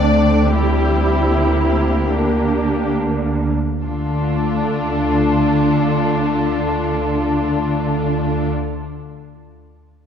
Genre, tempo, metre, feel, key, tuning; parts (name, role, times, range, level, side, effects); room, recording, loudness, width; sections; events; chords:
classical; 32-43 BPM; 3/4; rubato; D minor; A4 = 440 Hz
muted chamber violin section; melody; 0.0-8.5 s; D4 to D5; -22 LUFS; left 5 dB
muted chamber violin section; second line; 0.0-8.5 s; Bb3 to A4; -25 LUFS; left 2 dB
muted studio viola section; accompaniment; 0.0-8.5 s; G3 to E4; -20 LUFS; right 1 dB
muted chamber cello section; bass; 0.0-8.5 s; D3; -23 LUFS; right 2 dB
muted chamber double bass section; bass; 0.0-8.5 s; D2; -22 LUFS; right 1 dB
wet concert hall reverb, RT60 2.4 s; heard from further back in the room; -15 LUFS; side -8 dB against mid
0.0-3.9 A section; 3.9-8.8 B section
slowing down 0.0-3.9
0.0 Gm/D; 3.9 Dm